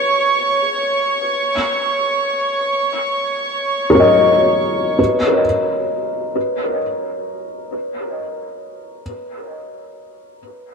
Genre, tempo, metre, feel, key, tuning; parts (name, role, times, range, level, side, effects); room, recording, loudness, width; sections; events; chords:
ambient; free time; A4 = 440 Hz
warm studio violin section; texture; 0.0-5.0 s; C#5 to C#6; -17 LUFS; right 2 dB
felt-muted upright piano; arpeggios; 3.9-10.7 s; A#4 to D#5; -17 LUFS; left 1 dB; dub echo
wet spring reverb, RT60 2.6 s; echo-heavy mix; -15 LUFS; side -5 dB against mid
0.0-5.0 A section; 5.0-8.6 B section
0.0 N.C.; 1.4 A#m; 5.0 N.C.